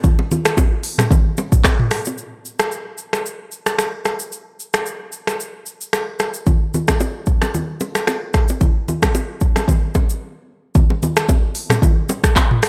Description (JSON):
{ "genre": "afrobeats", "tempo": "112 BPM", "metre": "4/4", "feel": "swing 55% on 16ths", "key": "none", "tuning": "none", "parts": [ { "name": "afro-pop drum kit", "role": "drums", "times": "0.0-12.7 s", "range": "finger snaps, handclaps, hi-hat, kick drum, rim click, shaker, toms", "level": "-19 LUFS", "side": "equal", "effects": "none" }, { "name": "congas and bongos", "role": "percussion", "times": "0.0-2.2, 6.5-12.5 s", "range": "none", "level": "-25 LUFS", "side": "equal", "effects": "none" } ], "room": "moderate plate reverb, RT60 1.5 s, digital ambience", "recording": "dreamy mix soaked in reverb", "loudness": "-19 LUFS", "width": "mono", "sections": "0.0-2.2 A section; 2.2-10.8 B section; 10.8-12.7 A section", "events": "break 10.2-10.8", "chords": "none" }